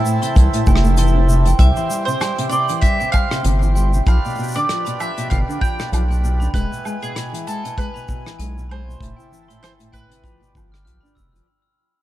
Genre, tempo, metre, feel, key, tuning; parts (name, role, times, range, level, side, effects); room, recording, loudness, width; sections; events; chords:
folktronica; 97 BPM; 4/4; swing 56% on 16ths; A4 = 440 Hz
glockenspiel with soft plastic mallets; second line; 0.0-11.3 s; G5 to F6; -28 LUFS; right 3 dB; ping-pong delay
accordion; sustained chords; 0.0-11.5 s; B2 to G#5; -30 LUFS; right 3 dB; stereo widening
nylon-string guitar; arpeggios; 0.0-11.5 s; A2 to D4; -24 LUFS; left 1 dB; ping-pong delay
soft brush drum kit; drums; 0.1-11.5 s; hi-hat, rim click, shaker, woodblock; -29 LUFS; left 1 dB
round analog bass; bass; 0.4-11.4 s; E1 to C2; -16 LUFS; equal
kick drum; drums; 0.4-11.3 s; -17 LUFS; equal
mandolin; melody; 1.6-11.1 s; G#4 to G5; -24 LUFS; right 2 dB; ping-pong delay
small room ambience; dark, warm production; -15 LUFS; side -14 dB against mid
0.0-11.5 A section
fade-out 1.6-11.5
0.0 Fmaj7; 1.6 C; 4.1 G7/B; 6.5 E; 9.0 Fmaj7 (rootless); 10.2 G7